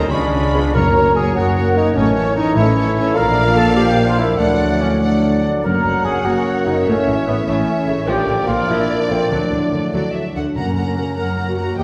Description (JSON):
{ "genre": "cinematic", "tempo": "98 BPM (dotted quarters)", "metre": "6/8", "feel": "straight", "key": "unclear", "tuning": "A4 = 441 Hz", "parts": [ { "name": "warm studio violin section", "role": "melody", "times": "0.0-11.8 s", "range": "C#5 to B5", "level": "-28 LUFS", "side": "equal", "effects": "none" }, { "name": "warm oboe", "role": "second line", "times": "0.0-0.7 s", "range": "C5 to C#5", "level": "-31 LUFS", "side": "equal", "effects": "none" }, { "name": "warm studio violin section", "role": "second line", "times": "0.0-11.8 s", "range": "G#4 to F#5", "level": "-32 LUFS", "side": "equal", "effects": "none" }, { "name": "clear symphonic viola section", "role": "accompaniment", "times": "0.0-11.8 s", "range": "C#3 to E#4", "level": "-29 LUFS", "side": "equal", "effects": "none" }, { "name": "concert harp", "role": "arpeggios", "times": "0.0-11.8 s", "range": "F#2 to C#5", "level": "-27 LUFS", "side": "equal", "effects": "none" }, { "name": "rich symphonic cello section", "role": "bass", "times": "0.0-11.8 s", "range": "D2 to D3", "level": "-25 LUFS", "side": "equal", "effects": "none" }, { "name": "rich symphonic double bass section", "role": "bass", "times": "0.0-11.8 s", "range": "F#1 to D#2", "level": "-26 LUFS", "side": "equal", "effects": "none" }, { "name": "hollow concert flute", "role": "second line", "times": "0.1-9.9 s", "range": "B4 to A#5", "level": "-30 LUFS", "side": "equal", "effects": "none" }, { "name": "warm clarinet", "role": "second line", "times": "0.1-11.8 s", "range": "B3 to A#4", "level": "-24 LUFS", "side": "equal", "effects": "none" }, { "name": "dark trumpet section", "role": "stabs", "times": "0.1-9.9 s", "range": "D4 to A#5", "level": "-26 LUFS", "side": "equal", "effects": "none" }, { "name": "bright trombone section", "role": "sustained chords", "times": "0.5-10.3 s", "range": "E#2 to G#3", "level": "-28 LUFS", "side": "equal", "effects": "none" }, { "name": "mellow French horn section", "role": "sustained chords", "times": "0.5-11.7 s", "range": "A3 to G#4", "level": "-27 LUFS", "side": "equal", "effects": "none" }, { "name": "timpani", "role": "percussion", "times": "0.7-1.3, 10.6-11.1 s", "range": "F#2", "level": "-28 LUFS", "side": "equal", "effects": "none" } ], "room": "wet scoring stage reverb, RT60 1.7 s", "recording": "recorded in a church or concert hall", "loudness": "-17 LUFS", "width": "mono", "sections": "0.7-10.6 A section; 10.6-11.8 B section", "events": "none", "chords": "0.1 C#7; 0.7 F#; 2.0 A; 3.2 A#; 4.4 D; 5.6 F#; 6.9 A; 8.1 A#; 9.3 D; 10.6 F#", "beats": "0.11 | 0.74 1.35 | 1.96 2.57 | 3.17 3.77 | 4.39 5.02 | 5.64 6.26 | 6.87 7.47 | 8.07 8.68 | 9.30 9.93 | 10.56 11.18 | 11.79" }